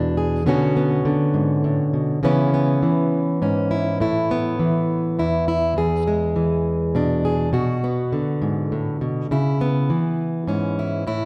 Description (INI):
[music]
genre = folk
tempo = 68 BPM (dotted quarters)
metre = 6/8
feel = straight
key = unclear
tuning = A4 = 440 Hz
[part]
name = fingerpicked plugged-in steel-string acoustic guitar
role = solo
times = 0.0-11.3 s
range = E2 to G#4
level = -21 LUFS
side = equal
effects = none
[sound]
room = moderate concert hall reverb, RT60 1.7 s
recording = recorded in a church or concert hall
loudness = -21 LUFS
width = mono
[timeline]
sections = 0.0-11.1 A section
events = none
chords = 0.5 Bmadd9; 2.2 C#m7; 4.0 Asus2; 5.8 E7; 7.5 Bm; 9.3 C#m7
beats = | 0.47 1.35 | 2.24 3.13 | 4.01 4.90 | 5.78 6.66 | 7.55 8.43 | 9.31 10.19 | 11.07